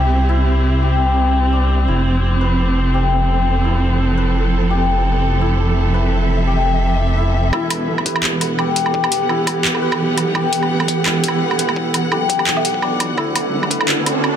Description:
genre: half-time drum and bass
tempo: 170 BPM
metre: 4/4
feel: swing 55% on 16ths, half-time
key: E minor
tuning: A4 = 441 Hz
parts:
  - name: warm studio string section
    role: sustained chords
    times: 0.0-14.4 s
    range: C3 to F#5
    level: -20 LUFS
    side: right 3 dB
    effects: sidechain pumping
  - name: santur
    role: arpeggios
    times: 0.0-14.4 s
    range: D4 to B4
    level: -22 LUFS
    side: left 7 dB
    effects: ping-pong delay
  - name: dark detuned saw bass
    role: bass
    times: 0.0-14.4 s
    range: E1 to D2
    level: -18 LUFS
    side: equal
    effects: high-pass filter
  - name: drum and bass drum kit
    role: drums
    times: 7.5-14.3 s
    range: handclaps, hi-hat, woodblock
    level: -20 LUFS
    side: right 1 dB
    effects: none
  - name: electronic kick drum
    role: drums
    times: 7.5-13.8 s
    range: none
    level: -31 LUFS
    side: equal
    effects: overdrive, high-pass filter on kick, high-pass filter on room
  - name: pulsing gated texture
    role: texture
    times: 7.6-14.4 s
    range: A4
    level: -26 LUFS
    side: right 4 dB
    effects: chorus, built-in reverb
  - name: riser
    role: sound effects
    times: 13.4-14.4 s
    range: none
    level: -23 LUFS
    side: equal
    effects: none
room: light reverb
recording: dense, heavily limited modern master, high-pass filter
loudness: -14 LUFS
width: side -9 dB against mid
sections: 0.0-7.5 A section; 7.5-14.4 B section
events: build-up 7.5-14.4; riser 13.4-14.4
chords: 0.0 C; 1.9 F; 7.5 Emadd9; 13.2 D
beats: 0.12 | 0.47 0.82 1.18 1.53 | 1.88 2.23 2.59 2.94 | 3.29 3.65 4.00 4.35 | 4.71 5.06 5.41 5.76 | 6.12 6.47 6.82 7.18 | 7.53 7.88 8.23 8.59 | 8.94 9.29 9.65 10.00 | 10.35 10.71 11.06 11.41 | 11.76 12.12 12.47 12.82 | 13.18 13.53 13.88 14.23

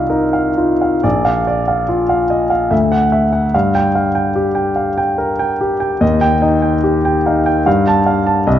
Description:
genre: classical, impressionist solo piano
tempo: 73 BPM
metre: 3/4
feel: rubato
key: unclear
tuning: A4 = 440 Hz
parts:
  - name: clear concert grand piano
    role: solo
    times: 0.0-8.6 s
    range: Bb1 to A5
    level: -12 LUFS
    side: equal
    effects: none
room: moderate concert hall reverb, RT60 2.0 s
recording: dark, warm production, nothing above 7.6 kHz, faint mains hum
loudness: -12 LUFS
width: side -11 dB against mid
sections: 0.0-1.0 A section; 1.0-8.6 A section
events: none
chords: 0.0 Cm7; 1.0 Bb; 2.7 Dadd9; 3.5 Gm7; 6.0 Eb; 7.7 Gsus2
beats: 0.10 | 1.04 1.90 2.71 | 3.54 4.36 5.19 | 6.02 6.83 7.66 | 8.46

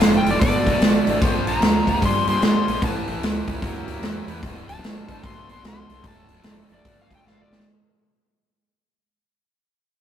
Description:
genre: blues rock power trio and southern rock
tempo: 149 BPM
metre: 4/4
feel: swing 63% on 8ths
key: D minor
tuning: A4 = 441 Hz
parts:
  - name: overdriven slide guitar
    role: melody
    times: 0.0-7.7 s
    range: D5 to C6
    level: -25 LUFS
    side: left 2 dB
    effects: none
  - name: overdriven tonewheel organ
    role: sustained chords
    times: 0.0-7.6 s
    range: A3 to A4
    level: -33 LUFS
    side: left 1 dB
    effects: slow rotary speaker
  - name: distorted electric guitar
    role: riff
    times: 0.0-7.6 s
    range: D2 to G3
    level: -28 LUFS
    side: equal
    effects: distortion
  - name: growling fingered electric bass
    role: bass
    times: 0.0-7.6 s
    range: D1 to Ab2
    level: -30 LUFS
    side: left 1 dB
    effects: overdrive
  - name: big rock drum kit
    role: drums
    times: 0.0-7.7 s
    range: hi-hat, kick drum, snare drum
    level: -20 LUFS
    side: right 1 dB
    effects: none
room: light reverb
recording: rough rehearsal-room recording, tube saturation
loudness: -18 LUFS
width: side -9 dB against mid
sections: 0.0-7.7 A section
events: fade-out 0.0-7.7; drum fill 7.2-7.7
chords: 0.0 Dm; 1.2 Bb7; 2.8 A7b9; 4.4 Dm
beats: 0.00 0.41 0.81 | 1.21 1.61 2.02 2.42 | 2.82 3.22 3.63 4.03 | 4.43 4.83 5.24 5.64 | 6.04 6.45 6.85 7.25

